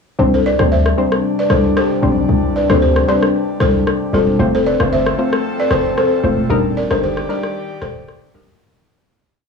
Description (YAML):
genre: afrobeats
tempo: 114 BPM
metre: 4/4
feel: swing 55% on 16ths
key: unclear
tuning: A4 = 440 Hz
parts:
  - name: soft round pluck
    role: accompaniment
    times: 0.2-8.6 s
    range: G3 to C5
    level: -18 LUFS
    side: left 3 dB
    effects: chorus, plate reverb
  - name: airy breathy pad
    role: sustained chords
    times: 0.7-8.6 s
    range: C3 to D5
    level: -20 LUFS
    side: left 2 dB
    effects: chorus, plate reverb
  - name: hard-hitting 808-style bass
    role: bass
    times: 0.2-8.6 s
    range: Eb1 to D2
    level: -18 LUFS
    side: left 1 dB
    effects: none
  - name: balafon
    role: riff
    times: 0.3-8.4 s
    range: F4 to E5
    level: -19 LUFS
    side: right 1 dB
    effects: tape echo
  - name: electronic rim click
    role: drums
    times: 0.6-8.2 s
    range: none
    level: -20 LUFS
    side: left 2 dB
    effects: vintage 12-bit sampler grit
room: moderate booth ambience, RT60 0.2 s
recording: home recording on cassette, small room reverb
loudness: -13 LUFS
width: side -5 dB against mid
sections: 0.2-8.6 breakdown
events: fade-out 6.5-8.6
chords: 0.2 Csus2; 6.5 Ebmaj7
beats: | 0.18 0.71 1.24 1.76 | 2.29 2.82 3.34 3.87 | 4.39 4.92 5.45 5.97 | 6.50 7.03 7.55 8.08